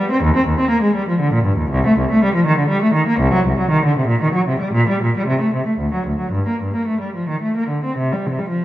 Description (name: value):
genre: classical, baroque-style suite movement for unaccompanied cello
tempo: 105-125 BPM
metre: 3/4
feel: rubato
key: G minor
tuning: A4 = 440 Hz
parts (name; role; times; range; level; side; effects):
- warm cello; solo; 0.0-8.6 s; C2 to C4; -15 LUFS; equal; none
room: wet recital hall reverb, RT60 1.7 s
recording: none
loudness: -15 LUFS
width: side -14 dB against mid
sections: 0.0-8.0 A section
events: none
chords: none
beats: | 0.24 0.72 1.22 | 1.73 2.23 2.72 | 3.22 3.73 4.23 | 4.75 5.27 5.78 | 6.33 6.88 7.43 | 7.99 8.51